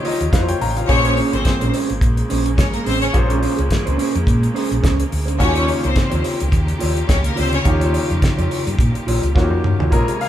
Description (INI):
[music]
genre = disco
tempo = 106 BPM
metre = 4/4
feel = swing 56% on 16ths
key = unclear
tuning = A4 = 440 Hz
[part]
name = bright grand piano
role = accompaniment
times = 0.0-10.3 s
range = Bb2 to Bb5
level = -25 LUFS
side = equal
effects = none
[part]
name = mellow electric guitar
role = accompaniment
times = 0.0-10.2 s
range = Db4 to Db5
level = -24 LUFS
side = right 2 dB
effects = none
[part]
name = clear studio string section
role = sustained chords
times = 0.0-10.3 s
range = Db3 to Db5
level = -27 LUFS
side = equal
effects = none
[part]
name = damped 70s drum kit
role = drums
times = 0.0-10.3 s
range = hi-hat, kick drum, snare drum, toms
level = -20 LUFS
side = equal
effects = none
[part]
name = hollow-body short-scale fingered electric bass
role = bass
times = 0.2-10.0 s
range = Ab1 to Bb2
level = -20 LUFS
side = equal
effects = none
[part]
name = clear studio string section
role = second line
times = 0.9-7.6 s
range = Bb3 to Db5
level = -21 LUFS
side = left 3 dB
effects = none
[sound]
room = moderate large studio reverb, RT60 0.9 s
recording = band playing live in one room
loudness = -15 LUFS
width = side -11 dB against mid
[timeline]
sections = 0.0-9.9 A section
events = grand piano fill 0.0-0.9; drum fill 9.4-9.9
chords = 0.0 Eb9; 0.9 Bbm9; 5.4 Eb9